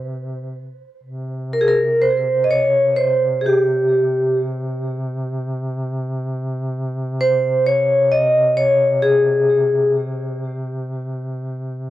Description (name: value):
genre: caucasian folk, Caucasian lament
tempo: 64 BPM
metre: 3/4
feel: uneven beats, rubato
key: C phrygian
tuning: A4 = 439 Hz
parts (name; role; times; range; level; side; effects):
- mellow duduk; drone; 0.0-11.9 s; C3; -25 LUFS; equal; none
- vibraphone with medium hard mallets; melody; 1.5-9.9 s; G4 to Eb5; -15 LUFS; equal; tape echo
room: little or no reverb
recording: dry, close 1970s-style studio recording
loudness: -16 LUFS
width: side -14 dB against mid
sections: 0.0-1.0 A section; 1.0-11.9 B section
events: none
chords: none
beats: 0.02 | 1.03 2.03 3.00 | 3.94 4.89 5.83 | 6.75 7.66 8.58 | 9.50 10.45 11.43